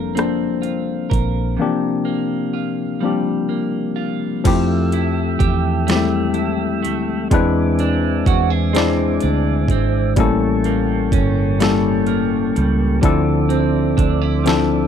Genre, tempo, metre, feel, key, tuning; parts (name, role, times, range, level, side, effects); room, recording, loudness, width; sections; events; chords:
slow six-eight R&B; 42 BPM (dotted quarters); 6/8; straight; F major; A4 = 440 Hz
clean electric guitar; second line; 0.0-14.9 s; A2 to Bb4; -24 LUFS; right 17 dB; lush chorus
tine electric piano; accompaniment; 0.0-14.9 s; E3 to D5; -19 LUFS; left 8 dB
vintage muted fingered electric bass; bass; 0.0-14.9 s; F1 to F2; -20 LUFS; right 2 dB
smooth R&B drum kit; drums; 0.2-14.7 s; crash cymbal, hi-hat, kick drum, rim click, snare drum; -19 LUFS; right 2 dB
tonewheel organ; sustained chords; 4.4-14.9 s; Bb3 to E6; -28 LUFS; right 5 dB; overdrive, slow rotary speaker
little or no reverb; dry, close 1970s-style studio recording; -16 LUFS; side -8 dB against mid
0.0-4.5 A section; 4.5-14.9 B section
0.0 Gm11; 1.6 C7sus4; 4.5 Fmaj9; 7.3 E7b13; 10.2 A7b9; 13.0 Dm9